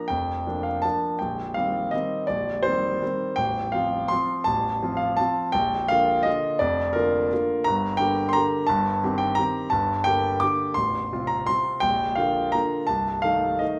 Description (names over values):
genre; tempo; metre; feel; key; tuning
classical, piano waltz; 150-185 BPM; 3/4; rubato; Bb major, G minor from 7.7 s; A4 = 440 Hz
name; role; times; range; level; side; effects
clear grand piano; solo; 0.0-13.8 s; A0 to D6; -24 LUFS; equal; none
room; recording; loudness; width
moderate recital hall reverb, RT60 1.5 s; none; -24 LUFS; mono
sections
0.0-13.8 A section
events
none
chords
0.0 Bb; 1.2 Cm7/Bb; 3.4 F/A; 5.6 Bb; 7.7 Gm; 8.7 Cm/G; 9.7 Gm; 10.8 F/A; 11.8 Bb; 12.9 Adim/C